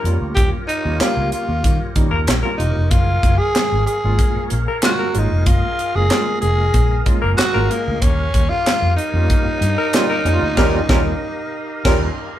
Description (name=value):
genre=funk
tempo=94 BPM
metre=4/4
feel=straight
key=unclear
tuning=A4 = 440 Hz
part: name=growling tenor saxophone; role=second line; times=0.0-12.0 s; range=Bb4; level=-24 LUFS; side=left 5 dB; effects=none
part: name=tonewheel organ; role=sustained chords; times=0.0-12.4 s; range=F4 to F5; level=-30 LUFS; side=equal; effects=slow rotary speaker, overdrive, chorus vibrato
part: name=vintage muted fingered electric bass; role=bass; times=0.0-12.1 s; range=E1 to Eb3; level=-20 LUFS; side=equal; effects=none
part: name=barky reed electric piano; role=stabs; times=0.1-12.1 s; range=G3 to G4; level=-24 LUFS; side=right 3 dB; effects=overdrive, fast tremolo
part: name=crisp fusion drum kit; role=drums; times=0.1-12.1 s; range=crash cymbal, handclaps, hi-hat, kick drum, snare drum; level=-18 LUFS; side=equal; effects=none
part: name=growling tenor saxophone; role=melody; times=0.4-12.4 s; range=Bb3 to Ab4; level=-21 LUFS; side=equal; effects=none
room=moderate studio reverb, RT60 0.8 s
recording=band playing live in one room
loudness=-15 LUFS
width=side -12 dB against mid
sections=0.0-12.4 A section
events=band accent 10.6-12.4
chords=0.0 Eb9; 2.9 Gbmaj9; 8.0 Eb9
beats=| 0.37 1.00 1.64 2.28 | 2.92 3.56 4.20 4.83 | 5.47 6.11 6.75 7.39 | 8.03 8.66 9.30 9.94 | 10.58 11.22 11.85